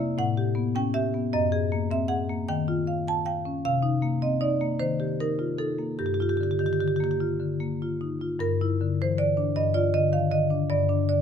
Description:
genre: classical, contemporary piece for solo marimba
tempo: 51 BPM (dotted quarters)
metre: 6/8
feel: uneven beats, rubato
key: G minor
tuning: A4 = 438 Hz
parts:
  - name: marimba with medium hard mallets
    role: solo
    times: 0.0-11.2 s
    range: F#2 to A5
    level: -23 LUFS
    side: left 1 dB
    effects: none
room: light reverb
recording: close, detailed microphones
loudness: -24 LUFS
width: side -7 dB against mid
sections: 0.0-8.4 A section; 8.4-11.2 A section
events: none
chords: 0.2 A9; 1.3 F#add9; 2.5 Eb9; 3.6 Cm7; 4.8 Eb; 6.0 Gm7; 8.4 Gm6; 9.6 Ebmaj9/G; 10.7 N.C.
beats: 0.18 | 1.33 2.47 | 3.61 4.78 | 5.99 7.21 | 8.40 9.57 | 10.71

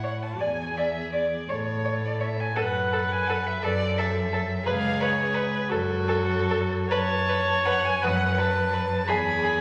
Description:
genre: classical, slow romantic movement for string quartet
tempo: 47-61 BPM (dotted quarters)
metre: 6/8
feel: rubato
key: unclear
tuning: A4 = 441 Hz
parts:
  - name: rich violin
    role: melody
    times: 0.0-9.6 s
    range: A4 to B5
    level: -32 LUFS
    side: equal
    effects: none
  - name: dark violin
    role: second line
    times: 0.0-9.5 s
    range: G#4 to D5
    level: -32 LUFS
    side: equal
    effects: none
  - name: warm viola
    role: accompaniment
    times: 0.0-9.6 s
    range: E4 to C#5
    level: -30 LUFS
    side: equal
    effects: none
  - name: dark cello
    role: bass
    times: 0.0-9.6 s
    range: C#2 to A2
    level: -31 LUFS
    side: equal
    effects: none
room: wet recital hall reverb, RT60 1.4 s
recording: none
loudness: -25 LUFS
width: mono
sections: 0.0-9.6 A section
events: none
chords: 0.4 E7; 1.5 A; 2.6 F#m; 4.7 C#5; 5.7 F#m; 6.9 B5/F#; 9.1 E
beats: | 0.41 1.50 | 2.57 3.63 | 4.67 5.70 | 6.92 8.02 | 9.08

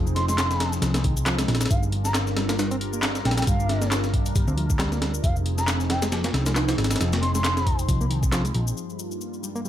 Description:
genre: breakbeat, breaks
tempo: 136 BPM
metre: 4/4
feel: swing 56% on 16ths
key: G phrygian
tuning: A4 = 442 Hz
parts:
  - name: phased analog pad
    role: sustained chords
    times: 0.0-9.7 s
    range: G2 to Bb4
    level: -31 LUFS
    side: equal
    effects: phaser, chorus, sidechain pumping
  - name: bright reed electric piano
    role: riff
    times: 0.0-9.7 s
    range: Eb3 to C4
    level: -32 LUFS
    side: equal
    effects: fast tremolo, low-pass filter, ping-pong delay
  - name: hollow-body short-scale picked electric bass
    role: bass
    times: 0.0-8.7 s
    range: F1 to D2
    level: -25 LUFS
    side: equal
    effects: none
  - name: electronic shaker and handclaps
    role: drums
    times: 0.1-9.7 s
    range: none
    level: -32 LUFS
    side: left 2 dB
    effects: small room ambience
  - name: mellow hollow concert flute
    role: melody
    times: 0.2-7.8 s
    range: F5 to C6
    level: -31 LUFS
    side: equal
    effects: old record sound, ping-pong delay
  - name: breakbeat sampler-style drum kit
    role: drums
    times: 0.2-8.7 s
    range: hi-hat, kick drum, snare drum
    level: -25 LUFS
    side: equal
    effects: small room ambience
room: digital ambience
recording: none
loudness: -21 LUFS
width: side -11 dB against mid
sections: 0.0-8.8 A section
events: none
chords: 0.0 Fm7; 1.7 Gm7; 5.2 Fm7; 8.8 Gm7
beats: 0.39 0.83 1.27 | 1.71 2.15 2.59 3.03 | 3.47 3.92 4.36 4.80 | 5.24 5.68 6.12 6.56 | 7.00 7.45 7.89 8.33 | 8.77 9.21 9.65

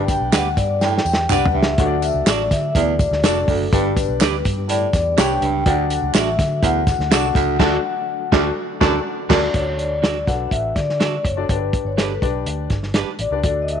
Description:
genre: uptempo 1960s-style soul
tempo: 124 BPM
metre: 4/4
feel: straight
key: D major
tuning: A4 = 440 Hz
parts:
  - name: warm upright piano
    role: accompaniment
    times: 0.0-13.8 s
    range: D4 to D5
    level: -26 LUFS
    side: left 10 dB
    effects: none
  - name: percussive tonewheel organ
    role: sustained chords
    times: 0.0-9.5 s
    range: D3 to G4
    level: -33 LUFS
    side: left 12 dB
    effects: slow rotary speaker
  - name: warm baritone saxophone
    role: riff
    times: 0.0-9.4 s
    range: D2 to A2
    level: -24 LUFS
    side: right 11 dB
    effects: none
  - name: vintage muted fingered electric bass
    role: bass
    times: 0.0-13.8 s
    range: F1 to D3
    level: -24 LUFS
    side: equal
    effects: none
  - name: vibraphone with soft mallets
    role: melody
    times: 0.1-13.8 s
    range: A4 to G5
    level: -22 LUFS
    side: left 3 dB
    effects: none
  - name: warm soul drum kit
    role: drums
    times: 0.1-13.8 s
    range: crash cymbal, hi-hat, kick drum, snare drum, toms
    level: -20 LUFS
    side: equal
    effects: none
  - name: tambourine and handclaps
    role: percussion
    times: 0.1-7.5 s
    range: none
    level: -30 LUFS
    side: right 3 dB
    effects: none
  - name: clean electric guitar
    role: stabs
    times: 0.3-13.1 s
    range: D4 to D5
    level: -26 LUFS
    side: right 12 dB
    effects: tube saturation
room: light reverb, studio ambience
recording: 1960s-style stereo with parts hard left and right, nothing above 10.3 kHz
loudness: -16 LUFS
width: side -8 dB against mid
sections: 0.0-9.5 A section; 9.5-13.8 B section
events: vibraphone solo 0.0-9.5; drum fill 0.8-1.8; band accent 7.6-9.5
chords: 0.0 G; 1.8 D; 3.7 G; 5.7 D; 11.5 G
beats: 0.33 0.81 1.30 | 1.79 2.27 2.76 3.24 | 3.73 4.21 4.70 5.18 | 5.67 6.15 6.63 7.12 | 7.60 8.09 8.57 9.06 | 9.54 10.03 10.52 11.01 | 11.49 11.98 12.47 12.96 | 13.44

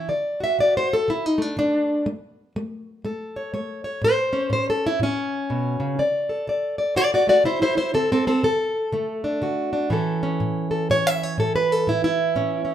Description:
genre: acoustic country blues, solo or duo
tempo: 122 BPM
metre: 4/4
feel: swing 61% on 8ths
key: A major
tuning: A4 = 440 Hz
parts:
  - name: fingerpicked plugged-in old ladder-braced acoustic guitar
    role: solo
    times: 0.0-12.7 s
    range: A2 to E5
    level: -20 LUFS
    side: equal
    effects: none
room: moderate stone room reverb, RT60 1.0 s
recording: band playing live in one room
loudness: -20 LUFS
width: side -10 dB against mid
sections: 0.0-12.7 A section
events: steel-string acoustic guitar solo 0.0-12.7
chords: 0.1 D; 2.1 A; 6.0 D; 9.9 A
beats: | 0.10 0.59 1.08 1.58 | 2.07 2.56 3.05 3.54 | 4.03 4.52 5.01 5.50 | 5.99 6.48 6.97 7.46 | 7.95 8.44 8.93 9.42 | 9.91 10.40 10.89 11.38 | 11.87 12.36

